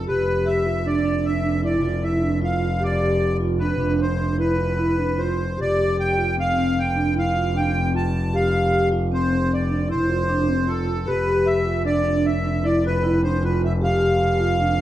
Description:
contemporary instrumental, chamber music in an uneven meter; 153 BPM; 7/4; straight; A4 = 442 Hz
accordion; melody; 0.0-14.8 s; A4 to A5; -24 LUFS; equal; light tremolo tuning
rich double bass; bass; 0.0-14.8 s; F1; -23 LUFS; equal
vibraphone with soft mallets; arpeggios; 0.1-14.7 s; C4 to G4; -23 LUFS; right 1 dB
wet recital hall reverb, RT60 1.5 s; dark, warm production; -19 LUFS; side -13 dB against mid
0.0-14.8 A section
0.1 G7/F; 5.6 Fsus2; 11.1 G7/F
| 0.07 0.46 0.85 1.24 1.63 2.02 2.41 | 2.81 3.20 3.59 3.99 4.38 4.78 5.18 | 5.58 5.97 6.37 6.77 7.16 7.55 7.94 | 8.34 8.72 9.11 9.50 9.89 10.29 10.68 | 11.07 11.46 11.85 12.25 12.64 13.04 13.43 | 13.82 14.21 14.60

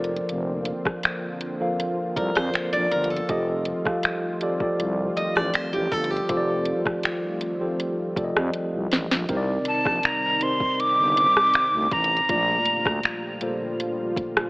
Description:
contemporary R&B; 80 BPM; 4/4; straight; A4 = 440 Hz
mellow tine electric piano; accompaniment; 0.0-14.5 s; Bb2 to F5; -27 LUFS; equal; medium stereo tremolo
warm analog pad; sustained chords; 0.0-14.5 s; D3 to F4; -33 LUFS; equal; chorus, sidechain pumping
growling FM bass; bass; 0.0-13.0 s; F1 to F2; -30 LUFS; equal
smooth R&B drum kit; drums; 0.0-14.5 s; finger snaps, hi-hat, kick drum, rim click, snare drum; -25 LUFS; equal
picked steel-string acoustic guitar; arpeggios; 2.2-7.2 s; G4 to Eb5; -27 LUFS; equal
breathy bright jazz flute; melody; 9.7-13.4 s; A5 to D6; -20 LUFS; equal
light reverb, digital ambience; AM radio sound; -21 LUFS; side -25 dB against mid
0.0-9.3 A section; 9.3-14.5 B section
drum fill 8.5-9.3; tine electric piano fill 14.2-14.5
0.0 Bbmaj9/F; 3.3 F9; 9.3 Cm9; 12.3 Gm7/Bb
| 0.29 1.04 1.79 2.54 | 3.29 4.04 4.79 5.54 | 6.29 7.04 7.79 8.54 | 9.29 10.04 10.79 11.54 | 12.29 13.04 13.79

